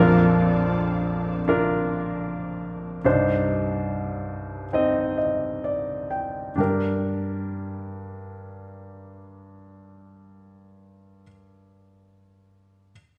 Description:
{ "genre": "pop", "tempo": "62-80 BPM", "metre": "4/4", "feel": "straight", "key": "G minor", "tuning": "A4 = 437 Hz", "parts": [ { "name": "clear baby grand piano", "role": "accompaniment", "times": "0.0-12.9 s", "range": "Bb1 to G5", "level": "-24 LUFS", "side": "equal", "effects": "none" } ], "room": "moderate scoring stage reverb, RT60 1.9 s", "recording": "recorded in a church or concert hall, lossy compression artefacts", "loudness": "-25 LUFS", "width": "mono", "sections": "0.0-6.6 A section; 6.6-10.4 B section", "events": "slowing down 0.0-6.6; grand piano fill 4.7-6.6", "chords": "0.0 Bb; 3.1 Cmadd9; 6.6 Gm" }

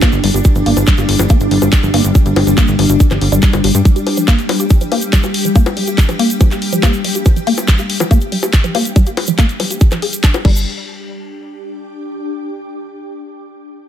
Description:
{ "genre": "psychedelic trance", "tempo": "141 BPM", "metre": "4/4", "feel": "straight", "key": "unclear", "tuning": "A4 = 442 Hz", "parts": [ { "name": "evolving wavetable pad", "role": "sustained chords", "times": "0.0-10.4 s", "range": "G3 to G4", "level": "-19 LUFS", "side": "left 2 dB", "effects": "ensemble chorus, built-in reverb, phaser, sidechain pumping" }, { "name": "woody wave-folded pluck", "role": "riff", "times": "0.0-10.6 s", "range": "F3 to Ab4", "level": "-20 LUFS", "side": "moving between left 6 dB and right 4 dB", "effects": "chorus, auto-pan, sidechain pumping, dub echo" }, { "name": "electronic kick drum", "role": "drums", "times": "0.0-10.5 s", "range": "none", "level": "-10 LUFS", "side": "equal", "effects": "studio reverb" }, { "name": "garage drum kit", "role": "drums", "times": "0.0-10.5 s", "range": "bongos, crash cymbal, handclaps, hi-hat", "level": "-19 LUFS", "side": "left 3 dB", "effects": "studio reverb" }, { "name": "egg shaker", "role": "percussion", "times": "0.0-10.6 s", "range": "none", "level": "-26 LUFS", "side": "right 2 dB", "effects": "none" }, { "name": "ethereal airy pad", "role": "texture", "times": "0.0-12.3 s", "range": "D4 to G6", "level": "-25 LUFS", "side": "right 1 dB", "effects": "ensemble chorus, built-in reverb, sidechain pumping" }, { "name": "plucky analog bass", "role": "bass", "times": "0.1-3.8, 10.4-10.6 s", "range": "G1 to G2", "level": "-15 LUFS", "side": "equal", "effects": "none" } ], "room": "little or no reverb", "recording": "none", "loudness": "-11 LUFS", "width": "side -10 dB against mid", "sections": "0.0-10.7 A section; 10.7-12.4 B section", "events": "fade-out on ambient pad 0.0-10.7; filter sweep on synth arpeggio sound 0.0-10.7", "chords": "0.0 G5" }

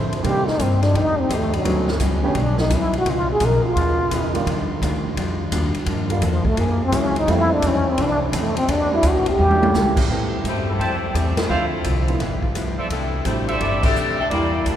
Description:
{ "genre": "jazz, big band swing", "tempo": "171 BPM", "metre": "4/4", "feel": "swing 65% on 8ths", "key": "A minor from 10.1 s", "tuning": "A4 = 439 Hz", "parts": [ { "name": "vintage hollow-body jazz guitar", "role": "accompaniment", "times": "0.0-14.8 s", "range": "F2 to G#4", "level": "-28 LUFS", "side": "left 2 dB", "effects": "none" }, { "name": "upright bass", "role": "bass", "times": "0.0-14.8 s", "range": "G1 to C3", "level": "-23 LUFS", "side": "equal", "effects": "none" }, { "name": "swinging big-band drum kit", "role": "drums", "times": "0.1-14.8 s", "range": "crash cymbal, hi-hat, kick drum, ride cymbal, snare drum, toms", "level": "-26 LUFS", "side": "equal", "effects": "none" }, { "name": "warm upright piano", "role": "accompaniment", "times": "0.2-14.8 s", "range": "D3 to E5", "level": "-28 LUFS", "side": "right 2 dB", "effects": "none" }, { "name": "trombone with plunger mute", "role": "melody", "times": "0.3-10.0 s", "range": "D3 to Bb4", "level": "-22 LUFS", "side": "equal", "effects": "none" }, { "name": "clear saxophone section", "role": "melody", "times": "10.5-14.8 s", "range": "E3 to E5", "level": "-25 LUFS", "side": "left 3 dB", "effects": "none" }, { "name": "warm trumpet section", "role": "stabs", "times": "10.8-13.9 s", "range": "A4 to A5", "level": "-28 LUFS", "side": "right 2 dB", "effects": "none" } ], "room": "wet cathedral reverb, RT60 6.1 s", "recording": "recorded in a church or concert hall", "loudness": "-17 LUFS", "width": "side -10 dB against mid", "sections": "0.0-10.1 A section; 10.1-14.8 B section", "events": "trombone solo 0.0-10.1; drum fill 9.4-9.7; band accent 11.3, 13.8", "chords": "0.2 Cm7; 0.9 F9; 1.7 Gmaj9#11; 3.1 C#9; 4.5 Ebmaj9; 5.9 Gm7; 6.6 F#9; 7.3 Fmaj7; 8.7 Em7b5; 9.4 A7b9; 10.1 Am7; 11.5 Dm9; 12.2 G13; 12.9 C69" }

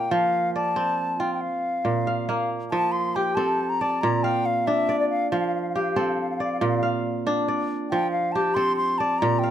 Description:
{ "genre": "west african traditional, West African string and xylophone music", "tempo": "92 BPM (dotted quarters)", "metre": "12/8", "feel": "straight", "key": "F major", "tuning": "A4 = 439 Hz", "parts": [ { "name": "bright baroque flute", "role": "melody", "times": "0.0-9.5 s", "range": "D5 to C6", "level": "-25 LUFS", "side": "left 2 dB", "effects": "none" }, { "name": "kora", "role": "arpeggios", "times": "0.0-9.5 s", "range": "Bb2 to F5", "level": "-24 LUFS", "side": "right 1 dB", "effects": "none" } ], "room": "light reverb", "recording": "close, detailed microphones", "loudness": "-22 LUFS", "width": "side -10 dB against mid", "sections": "0.0-2.7 A section; 2.7-9.5 B section", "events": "none", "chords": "0.1 F; 1.4 Bb5; 2.7 F; 4.0 Bb; 5.3 F; 6.6 Bb; 7.9 F" }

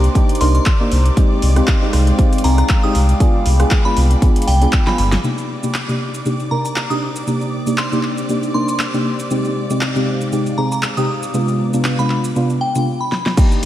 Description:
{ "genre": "deep house", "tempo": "118 BPM", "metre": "4/4", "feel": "swing 55% on 16ths", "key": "C minor", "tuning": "A4 = 440 Hz", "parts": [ { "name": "dark analog pad", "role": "sustained chords", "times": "0.0-13.7 s", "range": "C3 to Eb6", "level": "-27 LUFS", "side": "equal", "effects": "chorus, sidechain pumping" }, { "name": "deep mellow chord stab", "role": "stabs", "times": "0.0-13.7 s", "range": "C3 to Bb4", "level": "-19 LUFS", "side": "equal", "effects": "chorus, phaser, sidechain pumping, tape echo" }, { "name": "sub bass with octave", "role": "bass", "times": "0.0-5.2, 13.6-13.7 s", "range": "G1 to C2", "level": "-13 LUFS", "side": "equal", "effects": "sidechain pumping" }, { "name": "deep house drum kit", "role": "drums", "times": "0.0-13.7 s", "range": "crash cymbal, handclaps, hi-hat, rim click, shaker, snare drum", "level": "-24 LUFS", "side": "equal", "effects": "none" }, { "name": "rich chamber violin section", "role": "texture", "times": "0.0-12.9 s", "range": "D5 to D6", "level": "-32 LUFS", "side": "left 1 dB", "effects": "sidechain pumping" }, { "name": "electronic kick drum", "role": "drums", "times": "0.2-4.8, 13.4-13.5 s", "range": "none", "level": "-14 LUFS", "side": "equal", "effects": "none" }, { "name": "glassy synth bell", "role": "melody", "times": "0.4-13.2 s", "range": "G5 to Eb6", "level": "-25 LUFS", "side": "equal", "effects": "chorus, ping-pong delay" } ], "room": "moderate lush hall reverb, RT60 2.5 s", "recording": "dreamy mix soaked in reverb, vinyl crackle", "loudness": "-14 LUFS", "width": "side -13 dB against mid", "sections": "0.0-5.2 A section; 5.2-13.4 B section", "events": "drum fill 4.9-5.2, 13.1; filter sweep on synth stab 5.2-13.4; filter sweep on analog synth pad 5.2-13.4; break 12.9-13.4", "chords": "0.0 Cm7; 1.2 Fm9/C; 3.0 G7b9/C; 5.2 Cm7; 9.3 Fm9/C; 11.1 G7b9/C" }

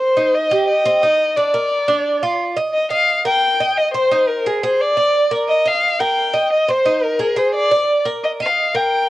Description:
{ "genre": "latin", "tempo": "175 BPM", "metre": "4/4", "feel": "straight", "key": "Eb major", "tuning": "A4 = 440 Hz", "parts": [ { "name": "warm violin", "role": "melody", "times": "0.0-9.1 s", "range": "Bb4 to G5", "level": "-16 LUFS", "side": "left 1 dB", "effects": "cassette tape" }, { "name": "Cuban tres", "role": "arpeggios", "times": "0.0-9.1 s", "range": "C4 to Eb5", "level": "-20 LUFS", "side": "right 2 dB", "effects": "plate reverb" } ], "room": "wet booth ambience, RT60 0.2 s", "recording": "home recording on cassette", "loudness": "-14 LUFS", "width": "side -16 dB against mid", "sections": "0.0-2.7 A section; 2.7-9.1 B section", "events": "none", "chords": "0.0 Cm; 1.4 Bb; 2.7 Ebsus2; 3.4 Cm7; 4.1 Abadd9/Eb; 4.8 Bb7; 5.5 Ebsus2; 6.2 Cm7; 6.9 Abadd9/Eb; 7.5 Bb7; 8.2 Ebsus2" }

